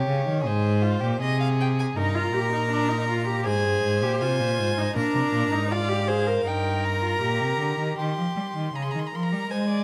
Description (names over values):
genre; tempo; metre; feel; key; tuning
classical, baroque-style fugue for string quartet; 80 BPM; 4/4; straight; unclear; A4 = 440 Hz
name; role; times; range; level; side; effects
clear violin; melody; 0.0-9.8 s; C5 to C6; -33 LUFS; equal; none
rich violin; second line; 0.0-9.8 s; F4 to D5; -31 LUFS; equal; none
warm cello; bass; 0.0-9.8 s; G2 to Ab3; -28 LUFS; equal; none
rich viola; accompaniment; 2.0-8.0 s; D4 to Bb4; -30 LUFS; equal; none
room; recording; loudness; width
light reverb; close, detailed microphones; -25 LUFS; mono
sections
0.0-8.0 A section; 8.0-9.8 B section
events
none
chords
0.5 Ab; 2.0 Eb/G; 3.5 Ab; 5.0 Bb; 6.5 Eb/G; 8.0 Eb7